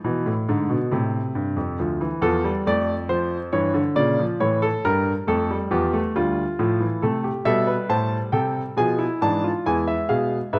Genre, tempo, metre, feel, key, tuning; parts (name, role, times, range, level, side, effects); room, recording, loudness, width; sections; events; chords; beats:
classical, baroque-style 4-part fugue for grand piano; 68 BPM; 3/4; straight; A4 = 439 Hz
clear grand piano; solo; 0.0-10.6 s; D2 to A5; -23 LUFS; equal
moderate recital hall reverb, RT60 1.6 s; dark, warm production; -23 LUFS; mono
0.0-10.6 A section
0.0 E7; 0.9 Am; 1.8 Dm; 3.5 C#dim7/G; 4.4 A7(no3); 6.2 Dm; 7.0 Am; 8.8 G#dim7/B; 9.7 E
0.03 0.91 | 1.78 2.65 3.52 | 4.40 5.28 6.15 | 7.02 7.90 8.78 | 9.65 10.54